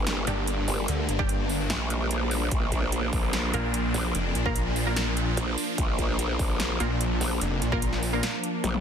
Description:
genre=heavy wobble dubstep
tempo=147 BPM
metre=4/4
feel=half-time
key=unclear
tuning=A4 = 440 Hz
part: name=supersaw pad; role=sustained chords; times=0.0-8.8 s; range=F3 to D4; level=-30 LUFS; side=equal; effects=phaser, sidechain pumping
part: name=growl bass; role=bass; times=0.0-8.8 s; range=G1 to Bb1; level=-28 LUFS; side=equal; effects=chorus, overdrive
part: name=big-room dance drum kit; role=drums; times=0.1-8.8 s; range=hi-hat, snare drum, toms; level=-32 LUFS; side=equal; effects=none
part: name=orchestra-hit-like synth stab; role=stabs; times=0.3-8.2 s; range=G3 to Bb4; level=-33 LUFS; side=right 1 dB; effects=built-in reverb, ping-pong delay
part: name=snarling distorted saw bass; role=bass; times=0.3-8.2 s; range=F1 to D2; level=-28 LUFS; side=equal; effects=distortion, overdrive
part: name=electronic kick drum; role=drums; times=1.2-7.8 s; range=none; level=-29 LUFS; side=equal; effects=none
room=light reverb, digital ambience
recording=dense, heavily limited modern master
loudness=-24 LUFS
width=side -8 dB against mid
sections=0.0-8.8 A section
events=drum fill 8.6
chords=0.0 Gm; 2.5 Bb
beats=0.07 0.47 | 0.88 1.29 1.70 2.11 | 2.52 2.92 3.33 3.74 | 4.15 4.56 4.96 5.37 | 5.78 6.19 6.60 7.00 | 7.41 7.82 8.23 8.64

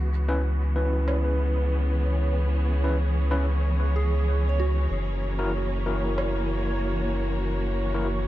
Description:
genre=ambient dub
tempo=94 BPM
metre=4/4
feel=straight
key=C# dorian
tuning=A4 = 442 Hz
part: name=warm studio string section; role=sustained chords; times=0.0-8.3 s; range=E3 to C#5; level=-32 LUFS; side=equal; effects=low-pass filter
part: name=soft dub sub bass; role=bass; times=0.0-8.3 s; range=F#1 to C#2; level=-24 LUFS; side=equal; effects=none
part: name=bubbling stepped-filter texture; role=texture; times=2.0-8.3 s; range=C#5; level=-38 LUFS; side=right 2 dB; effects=chorus, built-in reverb
part: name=overdriven tine electric piano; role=stabs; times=0.3-8.1 s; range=C#4 to B4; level=-31 LUFS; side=left 1 dB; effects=fast tremolo, dub echo
part: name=woodblock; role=drums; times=1.1-1.2, 6.2-6.3 s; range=none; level=-38 LUFS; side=right 2 dB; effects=none
part: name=soft synth bell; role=arpeggios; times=4.0-8.3 s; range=F#4 to C#5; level=-37 LUFS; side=right 7 dB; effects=chorus, phaser, low-pass filter, dub echo
room=light reverb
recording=none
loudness=-23 LUFS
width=side -15 dB against mid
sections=0.0-8.3 A section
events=none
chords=0.0 C#m7; 4.9 F#7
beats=0.44 1.07 1.71 | 2.35 2.99 3.63 4.27 | 4.90 5.54 6.18 6.82 | 7.46 8.10

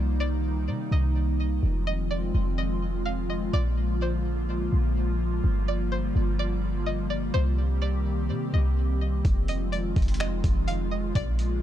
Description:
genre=hip hop, atmospheric cloud-rap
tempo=126 BPM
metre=4/4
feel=half-time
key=F dorian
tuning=A4 = 440 Hz
part: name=string-like resonator pluck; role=melody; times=0.0-11.6 s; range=C5 to F5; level=-36 LUFS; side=equal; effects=chorus, phaser, low-pass filter, digital delay
part: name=airy breathy pad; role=sustained chords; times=0.0-11.6 s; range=C3 to G4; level=-30 LUFS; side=equal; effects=chorus, sidechain pumping
part: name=clean 808-style bass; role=bass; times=0.0-11.6 s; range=F1 to C3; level=-26 LUFS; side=equal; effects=none
part: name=boom bap sampler-style drum kit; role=drums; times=9.2-11.5 s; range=finger snaps, hi-hat, kick drum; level=-26 LUFS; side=equal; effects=none
part: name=wind-like tuned noise texture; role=texture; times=9.9-11.6 s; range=Ab3 to Bb4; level=-43 LUFS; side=left 2 dB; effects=built-in reverb
room=digital ambience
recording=dark, warm production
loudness=-24 LUFS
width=side -12 dB against mid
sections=0.0-11.6 A section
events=none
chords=0.0 Cm7; 1.6 Fm7; 3.5 Bb7; 5.4 Gm7; 7.3 Cm7; 9.2 Fm7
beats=0.20 0.68 1.15 | 1.63 2.11 2.58 3.06 | 3.53 4.01 4.49 4.96 | 5.44 5.92 6.39 6.87 | 7.34 7.82 8.30 8.77 | 9.25 9.72 10.20 10.68 | 11.15

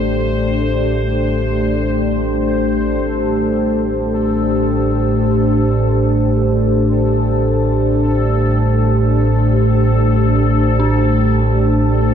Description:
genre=ambient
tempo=free time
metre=none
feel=none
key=A minor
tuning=A4 = 440 Hz
part: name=dark analog pad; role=sustained chords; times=0.0-12.1 s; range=A3 to C5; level=-16 LUFS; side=left 1 dB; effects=chorus, shimmer reverb
part: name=dark detuned synth bell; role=arpeggios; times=0.0-3.0, 10.8-12.1 s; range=D4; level=-24 LUFS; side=equal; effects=chorus, shimmer reverb
part: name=deep rumbling drone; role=drone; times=0.0-12.1 s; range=A1 to A2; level=-16 LUFS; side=right 1 dB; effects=built-in reverb
part: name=bubbling stepped-filter texture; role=texture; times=0.0-12.1 s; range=A4 to C5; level=-24 LUFS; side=left 4 dB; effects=chorus, built-in reverb, shimmer reverb
room=wet cathedral reverb, RT60 5.3 s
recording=dark, warm production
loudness=-13 LUFS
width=side -8 dB against mid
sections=0.0-3.0 A section; 3.0-12.1 B section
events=none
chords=0.0 Am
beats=free time

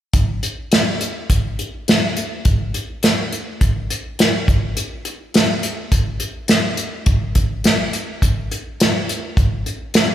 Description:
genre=rock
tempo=104 BPM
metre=4/4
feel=straight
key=none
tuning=none
part: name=unplugged drum kit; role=drums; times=0.1-10.1 s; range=hi-hat, kick drum, snare drum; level=-16 LUFS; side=equal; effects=none
room=moderate lush hall reverb, RT60 2.1 s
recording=live gig heard through the venue's PA, club reverb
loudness=-16 LUFS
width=side -11 dB against mid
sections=0.2-10.1 A section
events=none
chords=none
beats=| 0.15 0.73 1.30 1.88 | 2.46 3.04 3.61 4.19 | 4.77 5.34 5.92 6.50 | 7.07 7.65 8.22 8.79 | 9.37 9.94

